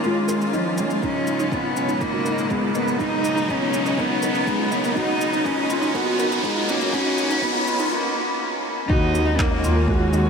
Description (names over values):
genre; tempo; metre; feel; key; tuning
piano and strings electronica; 122 BPM; 4/4; straight; unclear; A4 = 440 Hz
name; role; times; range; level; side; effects
dark cello; melody; 0.0-10.3 s; F3 to Eb4; -23 LUFS; equal; ping-pong delay
muted string quartet; sustained chords; 0.0-10.3 s; Ab2 to Gb4; -30 LUFS; left 1 dB; none
warbly dusty pluck; arpeggios; 0.0-10.2 s; Eb4 to Eb5; -30 LUFS; right 2 dB; none
felt-muted upright piano; riff; 0.0-10.3 s; Bb3 to F#4; -26 LUFS; equal; ensemble chorus, ping-pong delay
electronic shaker and handclaps; drums; 0.0-10.2 s; none; -36 LUFS; left 1 dB; none
riser; sound effects; 0.0-7.9 s; none; -30 LUFS; equal; none
electronic kick drum; drums; 1.0-10.0 s; none; -26 LUFS; equal; none
warm studio double bass section; bass; 8.9-10.3 s; Eb2; -21 LUFS; equal; sidechain pumping
room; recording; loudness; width
wet huge ambient reverb, RT60 7.5 s; dreamy mix soaked in reverb, high-pass filter; -19 LUFS; side -6 dB against mid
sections
0.0-8.9 A section; 8.9-10.3 B section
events
build-up 0.0-8.9; riser 0.0-7.9; filter sweep 0.0-8.9; break 7.9-8.9; drop 8.9-10.3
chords
0.0 Dbadd9; 1.0 Abm; 5.0 B; 8.9 Ebm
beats
0.05 0.54 | 1.03 1.52 2.01 2.50 | 3.00 3.49 3.98 4.47 | 4.96 5.46 5.95 6.44 | 6.93 7.42 7.92 8.41 | 8.90 9.39 9.88